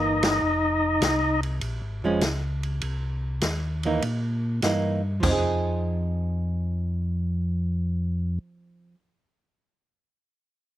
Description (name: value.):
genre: soul jazz organ trio.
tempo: 100 BPM.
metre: 4/4.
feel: swing 69% on 8ths.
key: F minor.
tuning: A4 = 439 Hz.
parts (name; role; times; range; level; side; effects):
percussive tonewheel organ; melody; 0.0-1.4 s; D#4; -22 LUFS; left 1 dB; slow rotary speaker, overdrive, slapback echo.
hollow-body jazz guitar; accompaniment; 0.0-9.1 s; E3 to Ab4; -28 LUFS; right 3 dB; slapback echo.
mellow tonewheel organ; bass; 0.0-8.4 s; F1 to Bb2; -27 LUFS; equal; slow rotary speaker.
vintage drum kit; drums; 0.2-5.4 s; hi-hat, kick drum, ride cymbal, snare drum, splash cymbal, toms; -28 LUFS; equal; none.
room: little or no reverb.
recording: recorded outdoors, with no room sound.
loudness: -23 LUFS.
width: side -13 dB against mid.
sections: 0.0-5.2 A section; 5.2-7.6 B section.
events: band accent 0.1-0.4.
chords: 0.4 F5; 1.6 Bbm7; 2.8 C7#9; 5.2 Fm7.